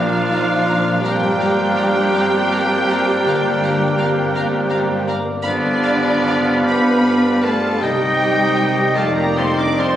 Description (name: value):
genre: classical, slow romantic movement for symphony orchestra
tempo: 46-56 BPM (dotted quarters)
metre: 12/8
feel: rubato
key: unclear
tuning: A4 = 439 Hz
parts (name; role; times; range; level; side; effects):
- warm studio violin section; melody; 0.0-10.0 s; D5 to D6; -24 LUFS; left 1 dB; none
- clear oboe; second line; 0.0-10.0 s; B3 to Bb4; -24 LUFS; right 1 dB; none
- large flute ensemble; second line; 0.0-10.0 s; G5 to B5; -29 LUFS; equal; none
- warm clarinet; second line; 0.0-10.0 s; D5 to Eb5; -28 LUFS; left 2 dB; none
- clear bassoon; accompaniment; 0.0-10.0 s; Eb3 to F3; -27 LUFS; right 1 dB; none
- dark studio viola section; accompaniment; 0.0-10.0 s; D4 to D5; -23 LUFS; right 1 dB; none
- clear trombone section; sustained chords; 0.0-10.0 s; F3 to Eb4; -24 LUFS; right 2 dB; none
- warm French horn section; sustained chords; 0.0-10.0 s; Bb3 to Eb4; -26 LUFS; left 2 dB; none
- concert harp; arpeggios; 0.0-10.0 s; F2 to Eb5; -26 LUFS; left 5 dB; none
- bright trumpet; stabs; 0.0-10.0 s; D5 to F5; -26 LUFS; right 1 dB; none
- rich studio cello section; bass; 0.0-10.0 s; D3 to D4; -23 LUFS; right 1 dB; none
- warm studio double bass section; bass; 0.0-10.0 s; F1 to C2; -30 LUFS; right 1 dB; none
- warm studio violin section; second line; 0.3-9.9 s; Eb5 to B5; -31 LUFS; equal; none
room: moderate scoring stage reverb, RT60 1.5 s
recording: recorded on a phone in the room, club reverb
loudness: -14 LUFS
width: side -11 dB against mid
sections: 0.0-10.0 A section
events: none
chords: 0.0 Bb; 1.0 Gm7; 5.4 G7; 7.8 Cm; 9.0 F13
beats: | 1.01 2.10 3.24 4.34 | 5.44 6.66 7.81 8.96